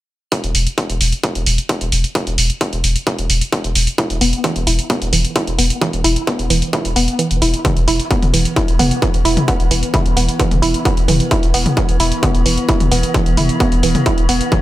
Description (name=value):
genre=driving peak-time techno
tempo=131 BPM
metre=4/4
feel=straight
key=unclear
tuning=A4 = 440 Hz
part: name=electronic kick drum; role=drums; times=0.3-14.6 s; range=none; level=-17 LUFS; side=equal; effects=distortion, high-pass filter on kick, high-pass filter on room
part: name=techno drum kit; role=drums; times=0.3-14.6 s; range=hi-hat, toms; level=-20 LUFS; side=equal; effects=sidechain pumping on hats, sidechain pumping on toms
part: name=warm sub bass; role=bass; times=0.4-14.4 s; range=E1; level=-18 LUFS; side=equal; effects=overdrive, sidechain pumping, low-pass filter
part: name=woody wave-folded pluck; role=riff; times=4.0-14.6 s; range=E3 to E4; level=-19 LUFS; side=right 2 dB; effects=chorus, tube saturation, sidechain pumping, digital delay
part: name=metallic inharmonic drone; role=drone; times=8.1-14.6 s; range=E3 to B3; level=-23 LUFS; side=equal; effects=chorus, built-in reverb, sidechain pumping
room=light reverb, digital ambience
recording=bright 1980s-style digital production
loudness=-13 LUFS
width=side -15 dB against mid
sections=0.3-7.6 A section; 7.6-14.6 B section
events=kick drops out 7.2-7.6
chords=0.3 E5